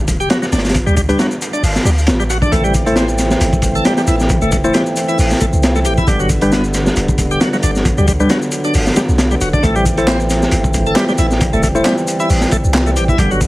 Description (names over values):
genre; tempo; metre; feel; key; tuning
breakbeat, breaks; 135 BPM; 4/4; swing 55% on 16ths; A dorian; A4 = 443 Hz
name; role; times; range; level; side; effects
warm 808-style bass; bass; 0.0-13.5 s; D1 to D2; -17 LUFS; equal; none
crunchy breakbeat drum kit; drums; 0.1-13.5 s; hi-hat, kick drum, snare drum; -16 LUFS; equal; none
electronic shaker and handclaps; drums; 0.1-13.5 s; none; -26 LUFS; left 1 dB; overdrive
bright tonewheel organ; riff; 0.2-13.4 s; F#3 to A4; -19 LUFS; equal; overdrive, slow rotary speaker, tape echo
tine electric piano; stabs; 1.1-11.9 s; G3 to C5; -20 LUFS; left 1 dB; medium tremolo, tape echo
percussive tonewheel organ; sustained chords; 2.5-13.5 s; D3 to C4; -20 LUFS; right 1 dB; overdrive, stopped rotary speaker, sidechain pumping
room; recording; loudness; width
moderate studio ambience, RT60 0.5 s; heavily compressed radio sound, vinyl crackle; -12 LUFS; side -18 dB against mid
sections
0.0-13.5 A section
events
none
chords
0.0 G5; 2.5 Am; 6.1 G; 9.6 Am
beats
0.30 | 0.74 1.19 1.63 2.08 | 2.52 2.97 3.41 3.85 | 4.30 4.74 5.19 5.63 | 6.08 6.52 6.97 7.41 | 7.86 8.30 8.74 9.19 | 9.63 10.08 10.52 10.97 | 11.41 11.86 12.30 12.74 | 13.19